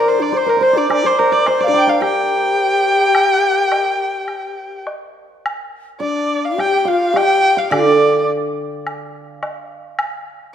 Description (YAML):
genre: chinese traditional, Chinese chamber ensemble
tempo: 106 BPM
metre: 4/4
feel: rubato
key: G yu mode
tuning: A4 = 440 Hz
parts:
  - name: dark erhu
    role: melody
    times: 0.0-8.3 s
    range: Bb4 to G5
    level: -16 LUFS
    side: right 1 dB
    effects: none
  - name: breathy bright low xiao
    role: second line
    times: 0.0-8.2 s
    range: D4 to C5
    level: -19 LUFS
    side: left 6 dB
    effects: none
  - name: hammered dulcimer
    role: second line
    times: 0.0-10.2 s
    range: Bb4 to G5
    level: -21 LUFS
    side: right 3 dB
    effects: none
  - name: guzheng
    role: accompaniment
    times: 0.0-0.3, 7.7-9.4 s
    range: D3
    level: -17 LUFS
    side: right 3 dB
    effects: none
  - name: woodblock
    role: percussion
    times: 0.9-10.1 s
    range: none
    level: -25 LUFS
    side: equal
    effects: none
room: moderate concert hall reverb, RT60 1.9 s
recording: minimal, uncompressed stereo recording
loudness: -13 LUFS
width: side -9 dB against mid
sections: 0.0-5.4 A section; 5.4-10.5 B section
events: none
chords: none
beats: 0.34 | 0.91 1.47 2.02 2.59 | 3.15 3.71 4.28 4.86 | 5.45 6.02 6.59 7.16 | 7.73 8.29 8.86 9.43 | 9.99